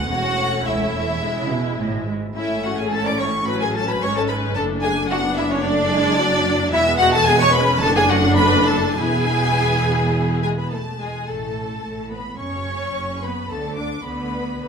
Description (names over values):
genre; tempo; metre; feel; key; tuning
quick classical-period movement for string orchestra; 109 BPM; 4/4; rubato; A major; A4 = 440 Hz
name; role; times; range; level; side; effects
rich chamber violin section; melody; 0.0-14.7 s; C#5 to D6; -23 LUFS; left 1 dB; none
warm studio viola section; accompaniment; 0.0-14.7 s; F#3 to E4; -24 LUFS; left 3 dB; none
warm chamber cello section; bass; 0.0-14.7 s; C#2 to D3; -27 LUFS; right 4 dB; none
warm chamber double bass section; bass; 0.0-14.7 s; E1 to D2; -27 LUFS; right 3 dB; none
warm symphonic violin section; second line; 0.1-14.7 s; C#4 to D5; -23 LUFS; equal; none
room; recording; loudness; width
wet recital hall reverb, RT60 1.7 s; minimal, uncompressed stereo recording; -17 LUFS; side -6 dB against mid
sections
0.0-11.3 A section; 11.3-14.7 B section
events
none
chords
0.1 A/E; 1.2 E; 2.4 A; 4.6 D/F#; 6.7 E; 7.8 D/F#; 9.0 E; 11.3 Asus2; 12.4 F#5; 13.5 Bm/D